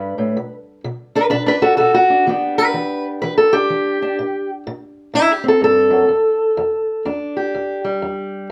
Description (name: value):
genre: acoustic country blues, solo or duo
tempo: 125 BPM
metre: 4/4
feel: swing 62% on 8ths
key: E minor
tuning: A4 = 439 Hz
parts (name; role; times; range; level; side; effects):
- fingerpicked steel-string acoustic guitar; solo; 0.0-8.5 s; E2 to B4; -17 LUFS; equal; none
room: moderate studio reverb, RT60 0.5 s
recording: none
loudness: -17 LUFS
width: mono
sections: 0.0-2.3 A section; 2.3-8.5 A section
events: steel-string acoustic guitar solo 0.0-8.5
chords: 0.4 Bm; 2.3 Em7; 4.2 Am7; 6.1 Em7